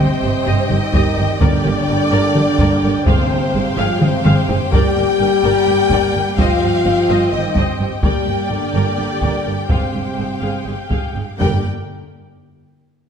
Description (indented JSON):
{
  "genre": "cinematic, epic orchestral film score",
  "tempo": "254 BPM (eighths)",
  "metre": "7/8",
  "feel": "straight",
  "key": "G phrygian",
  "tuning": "A4 = 440 Hz",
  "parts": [
    { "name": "warm studio violin section", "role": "melody", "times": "0.0-11.7 s", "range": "G5", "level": "-28 LUFS", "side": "left 1 dB", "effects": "none" },
    { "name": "warm symphonic violin section", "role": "second line", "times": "0.0-11.7 s", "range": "C5 to G5", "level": "-24 LUFS", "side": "left 3 dB", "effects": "none" },
    { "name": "warm symphonic viola section", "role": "accompaniment", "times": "0.0-11.7 s", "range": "G4 to F5", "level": "-26 LUFS", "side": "left 1 dB", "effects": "none" },
    { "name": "mellow French horn section", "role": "sustained chords", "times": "0.0-11.6 s", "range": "G3 to G4", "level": "-20 LUFS", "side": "left 3 dB", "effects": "none" },
    { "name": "rich symphonic string section", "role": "sustained chords", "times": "0.0-11.7 s", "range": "Ab3 to G5", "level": "-27 LUFS", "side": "left 1 dB", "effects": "none" },
    { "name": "warm trombone section", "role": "sustained chords", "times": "0.0-11.6 s", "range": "C3 to G3", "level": "-26 LUFS", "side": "right 5 dB", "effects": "none" },
    { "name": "dark symphonic cello section", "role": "bass", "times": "0.0-11.7 s", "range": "G2", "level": "-23 LUFS", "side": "right 2 dB", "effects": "none" },
    { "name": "warm symphonic double bass section", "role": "bass", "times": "0.0-11.7 s", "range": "G1", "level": "-23 LUFS", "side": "right 3 dB", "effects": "none" },
    { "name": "taiko ensemble", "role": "drums", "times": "0.7-11.5 s", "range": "none", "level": "-18 LUFS", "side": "equal", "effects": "none" },
    { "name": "timpani", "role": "percussion", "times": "1.4-3.7, 11.4-11.6 s", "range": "G2", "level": "-25 LUFS", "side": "left 1 dB", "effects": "none" }
  ],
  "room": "wet scoring stage reverb, RT60 1.6 s",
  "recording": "none",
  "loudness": "-14 LUFS",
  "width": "side -7 dB against mid",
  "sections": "0.0-11.4 A section; 11.4-13.1 B section",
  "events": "drum fill 4.0-4.7",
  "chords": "0.0 Cm/G; 1.4 Gm; 3.1 Fmadd9/G; 4.7 Gm; 6.4 Cm/G; 8.0 Gm; 9.7 Fmadd9/G; 11.4 Gm",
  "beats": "0.23 0.47 0.70 0.94 1.17 | 1.41 1.65 1.88 2.12 2.36 2.59 2.83 | 3.06 3.30 3.54 3.77 4.01 4.25 4.48 | 4.72 4.95 5.19 5.43 5.66 5.90 6.13 | 6.37 6.61 6.84 7.08 7.32 7.55 7.79 | 8.03 8.26 8.50 8.74 8.98 9.22 9.46 | 9.70 9.94 10.18 10.42 10.67 10.91 11.16 | 11.40 11.65"
}